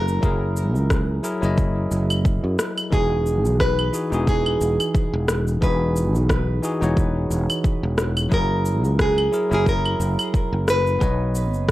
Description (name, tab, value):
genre	sunset chillout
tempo	89 BPM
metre	4/4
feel	swing 56% on 16ths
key	E lydian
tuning	A4 = 440 Hz
part	nylon-string guitar	melody	0.0-11.7 s	G#4 to B4	-24 LUFS	right 1 dB	analog delay
part	bell-like tine electric piano	accompaniment	0.0-11.7 s	E3 to D#5	-26 LUFS	equal	auto-pan, tape echo
part	sustaining fretless electric bass	bass	0.0-11.7 s	E1 to F#2	-22 LUFS	equal	none
part	electronic shaker, rim click and claves	drums	0.1-11.7 s	none	-26 LUFS	equal	overdrive
part	electronic kick drum	drums	0.2-11.7 s	none	-21 LUFS	equal	overdrive
room	digital ambience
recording	dry, gritty hardware recording, cassette tape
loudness	-18 LUFS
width	side -16 dB against mid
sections	0.0-11.7 A section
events	none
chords	0.0 F#9; 2.9 Emaj9; 8.3 F#9; 11.0 Badd9